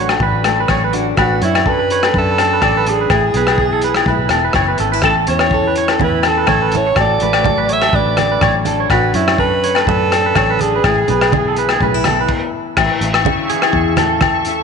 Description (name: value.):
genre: highlife guitar band.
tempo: 124 BPM.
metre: 4/4.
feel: swing 55% on 16ths.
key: A major.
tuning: A4 = 438 Hz.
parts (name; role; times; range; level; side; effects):
breathy alto saxophone; melody; 0.0-12.1 s; E4 to E5; -18 LUFS; right 3 dB; slapback echo.
fingerpicked steel-string acoustic guitar; accompaniment; 0.0-14.6 s; A2 to F#4; -22 LUFS; left 11 dB; none.
electric guitar at the edge of break-up; arpeggios; 0.0-14.6 s; E4 to D5; -19 LUFS; right 10 dB; lush chorus, slapback echo.
fingered electric bass; bass; 0.0-14.6 s; E1 to F#2; -21 LUFS; equal; none.
crunchy breakbeat drum kit; drums; 0.1-14.6 s; crash cymbal, hi-hat, kick drum, rim click; -21 LUFS; equal; none.
agogo bells; percussion; 0.1-14.4 s; none; -19 LUFS; left 13 dB; none.
congas; percussion; 5.0-14.3 s; none; -23 LUFS; right 10 dB; none.
bright tonewheel organ; sustained chords; 12.8-14.6 s; E5 to C#6; -23 LUFS; left 1 dB; overdrive, chorus vibrato, slow rotary speaker.
room: moderate echo chamber reverb, RT60 2.6 s.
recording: 1960s-style stereo with parts hard left and right, nothing above 10.6 kHz.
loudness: -12 LUFS.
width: side -6 dB against mid.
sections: 0.0-12.8 A section; 12.8-14.6 B section.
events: stop 12.3-12.8; clean electric guitar solo 12.8-14.6.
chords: 0.0 Bmadd9/A; 3.1 E/A; 5.0 A; 7.0 Bmadd9/A; 10.8 E/A; 12.8 A.